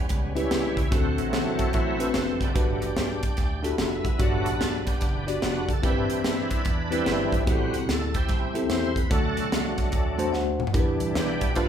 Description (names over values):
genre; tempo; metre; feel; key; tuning
uptempo gospel; 147 BPM; 4/4; swing 64% on 8ths; G major; A4 = 439 Hz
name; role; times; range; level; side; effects
bright tonewheel organ; sustained chords; 0.0-11.7 s; E3 to C5; -29 LUFS; right 1 dB; slow rotary speaker, overdrive, chorus vibrato
slap bass with an envelope filter; bass; 0.0-11.7 s; F1 to G2; -32 LUFS; equal; none
crisp fusion drum kit; drums; 0.1-11.7 s; hi-hat, kick drum, snare drum, toms; -26 LUFS; equal; none
bell-like tine electric piano; accompaniment; 0.4-11.7 s; G2 to A5; -28 LUFS; left 2 dB; fast stereo tremolo
room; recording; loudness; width
moderate large studio reverb, RT60 1.1 s; band playing live in one room; -23 LUFS; side -9 dB against mid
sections
0.0-11.7 A section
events
tonewheel organ solo 0.0-11.7; tine electric piano fill 9.9-10.7; drum fill 10.3-10.7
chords
0.0 A7 (rootless); 0.9 D7; 2.6 Gmaj7; 5.8 Cmaj7/G; 7.5 Am7; 9.1 D; 10.7 Em7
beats
0.10 0.51 | 0.92 1.33 1.74 2.15 | 2.56 2.97 3.38 3.79 | 4.20 4.61 5.02 5.43 | 5.83 6.25 6.65 7.06 | 7.47 7.88 8.29 8.70 | 9.11 9.52 9.93 10.33 | 10.74 11.15 11.56